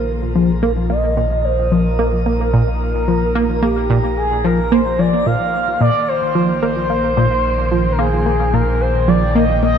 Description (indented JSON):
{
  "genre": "ambient, sequencer-driven space music",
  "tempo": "110 BPM",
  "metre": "4/4",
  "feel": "straight",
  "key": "unclear",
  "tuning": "A4 = 440 Hz",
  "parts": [
    { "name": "expressive portamento lead", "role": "melody", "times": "0.0-9.8 s", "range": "G4 to F5", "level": "-19 LUFS", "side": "equal", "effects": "wide subtle chorus, shimmer reverb, analog delay" },
    { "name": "phased analog pad", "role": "sustained chords", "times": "0.0-9.8 s", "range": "Eb3 to G5", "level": "-27 LUFS", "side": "equal", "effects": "phaser, chorus, shimmer reverb" },
    { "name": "round analog bass", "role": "bass", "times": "0.0-9.8 s", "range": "Bb1", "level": "-21 LUFS", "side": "equal", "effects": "none" },
    { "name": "tight sequenced synth", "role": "riff", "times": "0.4-9.8 s", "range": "Bb2 to Bb3", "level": "-18 LUFS", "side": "equal", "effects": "chorus, phaser, shimmer reverb, analog delay" }
  ],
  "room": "moderate plate reverb, RT60 3.3 s",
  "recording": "none",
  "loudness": "-14 LUFS",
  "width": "side -8 dB against mid",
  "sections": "0.0-9.8 A section",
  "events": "fade-in on analog synth pad 0.0-9.8",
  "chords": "0.0 Bbsus4"
}